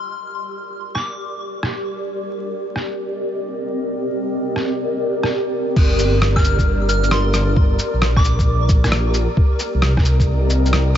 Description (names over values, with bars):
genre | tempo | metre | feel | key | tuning
future garage | 133 BPM | 4/4 | swing 66% on 16ths | G minor | A4 = 440 Hz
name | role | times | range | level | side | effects
soft synth bell | melody | 0.0-1.4, 6.4-8.6 s | C6 to F6 | -27 LUFS | left 1 dB | chorus, phaser, ping-pong delay
granular cloud pad | sustained chords | 0.4-11.0 s | C4 to Eb5 | -23 LUFS | equal | built-in reverb, sidechain pumping
lo-fi sampler-style drum kit | drums | 1.0-10.8 s | cabasa, crash cymbal, rim click, shaker | -23 LUFS | equal | low-pass filter on snare, low-pass filter on perc, low-pass filter on cymbals, low-pass filter on room
swelling detuned saw bass | bass | 5.8-11.0 s | G1 to C2 | -17 LUFS | equal | tube saturation, sidechain pumping
electronic kick drum | drums | 5.8-10.3 s | none | -16 LUFS | equal | none
flickering grainy texture | texture | 6.0-11.0 s | Bb4 | -31 LUFS | left 1 dB | built-in reverb
room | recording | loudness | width
light reverb | vinyl crackle, nothing above 7.7 kHz | -16 LUFS | side -10 dB against mid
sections
0.0-5.8 A section; 5.8-11.0 B section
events
filter sweep on ambient pad 0.0-5.8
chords
0.0 Gm; 2.2 Cm7; 5.8 Gm; 9.4 Cm7